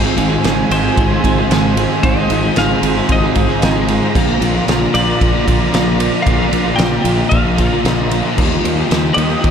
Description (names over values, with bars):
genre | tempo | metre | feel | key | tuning
rock, shoegaze and dream pop | 113 BPM | 4/4 | straight | Bb mixolydian | A4 = 444 Hz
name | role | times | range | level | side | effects
soft string machine | sustained chords | 0.0-9.5 s | F4 to Bb5 | -21 LUFS | right 1 dB | ensemble chorus
overdriven semi-hollow guitar | riff | 0.0-9.5 s | Ab2 to Ab4 | -20 LUFS | right 9 dB | reverse reverb
thick fuzz guitar | riff | 0.0-9.5 s | Ab2 to Eb4 | -20 LUFS | left 9 dB | distortion, ensemble chorus
fuzz fingered electric bass | bass | 0.0-9.5 s | Ab1 to Eb2 | -19 LUFS | equal | overdrive
loose indie drum kit | drums | 0.2-9.5 s | crash cymbal, kick drum, ride cymbal, snare drum | -18 LUFS | equal | none
twelve-string electric guitar | melody | 0.7-9.5 s | C5 to G5 | -22 LUFS | left 2 dB | tape echo
room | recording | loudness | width
moderate plate reverb, RT60 0.9 s | dreamy mix soaked in reverb | -12 LUFS | side -7 dB against mid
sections
0.0-9.5 A section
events
none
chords
0.0 Ab6; 4.1 Bb; 8.4 Ebadd9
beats
0.43 0.96 1.49 | 2.02 2.55 3.08 3.62 | 4.14 4.67 5.20 5.73 | 6.26 6.79 7.32 7.85 | 8.38 8.91 9.44